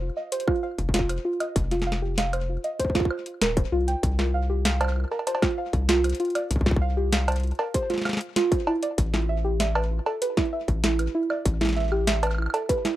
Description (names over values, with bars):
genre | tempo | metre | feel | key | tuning
IDM | 97 BPM | 4/4 | straight | unclear | A4 = 442 Hz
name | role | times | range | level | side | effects
round analog bass | bass | 0.0-12.5 s | Eb1 to C2 | -25 LUFS | left 1 dB | none
soft round pluck | arpeggios | 0.2-12.9 s | E4 to G5 | -27 LUFS | right 2 dB | chorus, tape echo
booming analog drum machine | drums | 0.3-13.0 s | cowbell, hi-hat, snare drum, woodblock | -28 LUFS | equal | none
electronic kick drum | drums | 0.5-12.8 s | none | -26 LUFS | left 1 dB | distortion, overdrive
room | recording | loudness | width
light reverb | rough home demo mix | -22 LUFS | side -14 dB against mid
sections
0.0-13.0 A section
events
none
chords
0.0 F7(no3); 3.7 Csus4; 8.7 A7sus2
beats
0.32 0.94 | 1.56 2.18 2.79 3.41 | 4.03 4.65 5.27 5.89 | 6.51 7.12 7.74 8.36 | 8.98 9.60 10.22 10.84 | 11.46 12.07 12.69